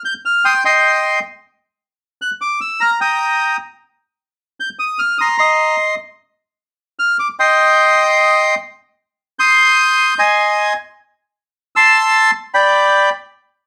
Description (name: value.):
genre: tango.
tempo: 151 BPM.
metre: 3/4.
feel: rubato.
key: C minor.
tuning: A4 = 440 Hz.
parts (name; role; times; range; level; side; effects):
bandoneon; solo; 0.0-13.1 s; D5 to G6; -14 LUFS; equal; none.
room: moderate studio reverb, RT60 0.6 s.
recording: band playing live in one room.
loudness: -14 LUFS.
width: mono.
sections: 0.0-8.8 A section; 8.8-13.7 B section.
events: none.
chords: 0.4 Cm; 1.6 N.C.; 2.8 Eb; 3.6 N.C.; 5.2 Cm7/Eb; 6.4 Cm; 10.0 Ab; 11.2 Am; 12.3 G.